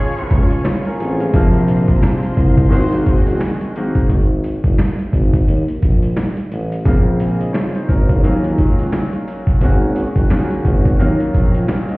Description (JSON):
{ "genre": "hip hop, boom-bap hip-hop", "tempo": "87 BPM", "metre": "4/4", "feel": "swing 60% on 16ths", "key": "unclear", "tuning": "A4 = 441 Hz", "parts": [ { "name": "clear concert grand piano", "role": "accompaniment", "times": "0.0-12.0 s", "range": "C3 to F5", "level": "-20 LUFS", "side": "left 1 dB", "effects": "cassette tape, high-pass filter, low-pass filter" }, { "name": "clear studio string section", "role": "sustained chords", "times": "0.0-4.1 s", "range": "F4 to Db6", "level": "-29 LUFS", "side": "equal", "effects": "high-pass filter, low-pass filter" }, { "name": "warm horn section", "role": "stabs", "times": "0.0-2.9 s", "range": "C4 to Db5", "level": "-28 LUFS", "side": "right 1 dB", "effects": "high-pass filter, low-pass filter, digital delay" }, { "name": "warm tuba", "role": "bass", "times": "0.2-11.6 s", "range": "Gb1 to Eb2", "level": "-18 LUFS", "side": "equal", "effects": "none" }, { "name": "boom bap sampler-style drum kit", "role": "drums", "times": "0.2-12.0 s", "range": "hi-hat, kick drum, snare drum", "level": "-15 LUFS", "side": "equal", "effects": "none" }, { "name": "finger snap", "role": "percussion", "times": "0.6-3.6 s", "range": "none", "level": "-45 LUFS", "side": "right 4 dB", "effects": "none" } ], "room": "little or no reverb", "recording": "heard muffled through a wall, stone room reverb, vinyl crackle, EQ", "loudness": "-13 LUFS", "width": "side -23 dB against mid", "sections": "0.0-4.1 A section; 4.1-12.0 B section", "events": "break 4.1-6.9", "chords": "0.0 Db; 1.3 Bbsus2; 2.7 Ab7; 4.1 N.C.; 5.5 Eb5; 6.9 Bbm9; 8.2 Ebm9; 9.6 Ab7sus4; 11.0 Ebm9" }